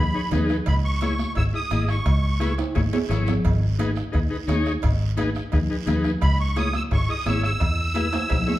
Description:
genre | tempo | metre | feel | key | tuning
latin, cumbia | 173 BPM | 4/4 | straight | unclear | A4 = 438 Hz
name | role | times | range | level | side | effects
musette accordion | melody | 0.0-2.5, 6.2-8.6 s | B5 to E6 | -28 LUFS | right 1 dB | none
combo organ | accompaniment | 0.0-8.6 s | D#4 to G#5 | -29 LUFS | left 2 dB | none
fingered electric bass | bass | 0.0-8.4 s | G#1 to E2 | -24 LUFS | equal | none
bombo | percussion | 0.3-8.5 s | none | -27 LUFS | equal | none
congas | percussion | 0.3-8.6 s | none | -30 LUFS | left 2 dB | none
cowbell and timbales | percussion | 0.3-8.6 s | none | -32 LUFS | right 5 dB | none
guiro | percussion | 0.3-8.6 s | none | -42 LUFS | right 8 dB | none
room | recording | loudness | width
wet large studio reverb, RT60 1.4 s | band playing live in one room | -20 LUFS | side -15 dB against mid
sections
0.0-8.6 A section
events
drum fill 2.6-3.4, 8.1-8.6; transistor combo organ fill 8.0-8.6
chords
0.0 G#m; 0.7 C#m; 3.4 G#m; 6.2 C#m; 7.6 E

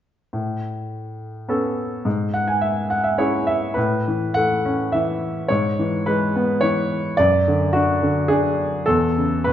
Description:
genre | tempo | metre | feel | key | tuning
classical, lyrical solo piano | 105 BPM | 3/4 | rubato | A major | A4 = 437 Hz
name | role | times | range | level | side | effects
clear concert grand piano | solo | 0.3-9.5 s | E2 to G#5 | -18 LUFS | equal | none
room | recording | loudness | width
moderate recital hall reverb, RT60 1.5 s | recorded in a church or concert hall, nothing above 7.5 kHz | -18 LUFS | side -10 dB against mid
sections
0.3-3.8 A section; 3.8-9.5 B section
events
grand piano fill 2.1-3.8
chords
0.3 Aadd9; 2.1 E6/G#; 3.8 Aadd9; 5.5 E6/G#; 7.2 D/F#; 8.9 A/E

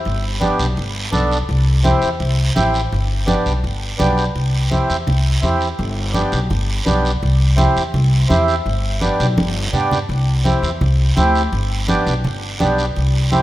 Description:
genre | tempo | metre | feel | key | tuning
latin, cumbia | 167 BPM | 4/4 | straight | C major | A4 = 440 Hz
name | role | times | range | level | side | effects
upright bass | bass | 0.1-13.4 s | G1 to G2 | -17 LUFS | equal | none
congas | percussion | 0.1-13.4 s | none | -23 LUFS | right 1 dB | none
guiro | percussion | 0.1-13.4 s | none | -28 LUFS | right 3 dB | none
mellow accordion | accompaniment | 0.4-13.4 s | B3 to A4 | -20 LUFS | right 1 dB | none
room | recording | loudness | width
light reverb, small room ambience | rough home demo mix | -15 LUFS | side -15 dB against mid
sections
0.0-4.4 A section; 4.4-13.4 A section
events
drum fill 9.4-10.1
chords
0.1 G; 1.5 C; 2.9 G; 4.4 C; 5.8 G; 7.2 C; 8.7 G; 10.1 C; 11.5 G

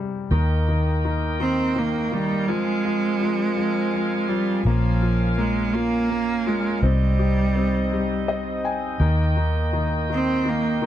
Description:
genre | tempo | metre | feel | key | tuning
six-eight pop ballad | 55 BPM (dotted quarters) | 6/8 | straight | unclear | A4 = 440 Hz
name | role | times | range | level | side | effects
clear concert grand piano | accompaniment | 0.0-10.9 s | C3 to Ab5 | -27 LUFS | left 7 dB | none
bright tonewheel organ | sustained chords | 0.3-10.9 s | Bb3 to Ab5 | -29 LUFS | right 1 dB | slow rotary speaker
vintage muted fingered electric bass | bass | 0.3-10.9 s | Bb1 to F2 | -22 LUFS | equal | none
bright cello | melody | 1.4-10.8 s | F3 to C4 | -23 LUFS | right 4 dB | tape echo
room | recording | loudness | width
light reverb | dry, close 1970s-style studio recording | -20 LUFS | side -11 dB against mid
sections
0.3-10.9 A section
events
grand piano fill 7.9-9.0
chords
0.3 Eb; 2.5 Fm; 4.7 Bbm7; 6.8 Cm; 9.0 Eb

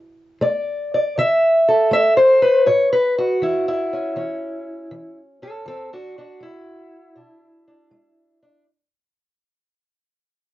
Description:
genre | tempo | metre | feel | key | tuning
acoustic country blues, solo or duo | 80 BPM | 4/4 | swing 68% on 8ths | unclear | A4 = 440 Hz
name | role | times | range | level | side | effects
fingerpicked steel-string acoustic guitar | solo | 0.0-8.7 s | A2 to E5 | -16 LUFS | equal | cassette tape
room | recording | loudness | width
moderate studio reverb, RT60 0.6 s | home recording on cassette, nothing above 7.7 kHz | -15 LUFS | side -15 dB against mid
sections
0.0-8.7 A section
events
fade-out 0.0-8.7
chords
0.0 D5; 2.7 A; 5.7 E7

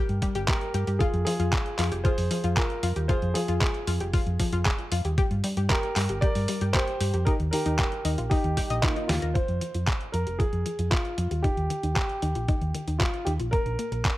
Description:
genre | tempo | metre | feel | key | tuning
italo disco | 115 BPM | 4/4 | straight | F dorian | A4 = 440 Hz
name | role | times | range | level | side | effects
dark grand piano | melody | 0.0-14.2 s | Bb3 to D5 | -31 LUFS | right 1 dB | tape echo
analog pluck | arpeggios | 0.0-14.2 s | Eb3 to Eb5 | -33 LUFS | left 3 dB | chorus, analog delay
hollow-body short-scale fingered electric bass | bass | 0.1-14.0 s | F1 to G2 | -27 LUFS | equal | none
detuned 8-bit digital drum machine | drums | 0.1-14.2 s | handclaps, hi-hat, snare drum | -31 LUFS | equal | overdrive
electronic kick drum | drums | 0.2-14.2 s | none | -26 LUFS | equal | overdrive
room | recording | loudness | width
digital ambience | dry, gritty hardware recording | -24 LUFS | side -16 dB against mid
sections
0.0-9.4 A section; 9.4-14.2 B section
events
drum fill 9.1; band accent 9.1; filter sweep on synth arpeggio sound 9.4-14.2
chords
0.0 Gm; 1.0 Fm; 5.2 Gm; 7.3 Ebadd9; 9.4 Fm; 11.4 Eb; 13.5 Bb

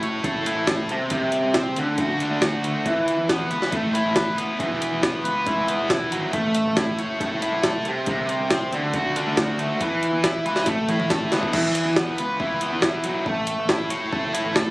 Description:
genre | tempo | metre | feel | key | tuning
indie rock | 138 BPM | 4/4 | straight | unclear | A4 = 440 Hz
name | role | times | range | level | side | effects
biting overdriven guitar | riff | 0.0-14.7 s | C3 to C#5 | -22 LUFS | equal | none
growling picked electric bass | bass | 0.0-14.7 s | E1 to E2 | -30 LUFS | equal | overdrive
jungle sampler-style drum kit | drums | 0.0-14.7 s | crash cymbal, hi-hat, kick drum, snare drum, toms | -24 LUFS | equal | overdrive
room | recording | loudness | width
light reverb | recorded on a phone in the room, club ambience, compression | -20 LUFS | side -20 dB against mid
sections
0.0-11.5 A section; 11.5-14.7 B section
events
drum fill 10.7-11.5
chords
0.0 A; 0.9 N.C.; 1.8 Dmaj7; 2.9 E5; 3.7 Asus2; 4.6 E5; 6.3 Aadd9; 7.9 N.C.; 8.7 Dmaj7; 9.8 E5; 10.7 Asus2; 11.5 Esus2; 13.3 A

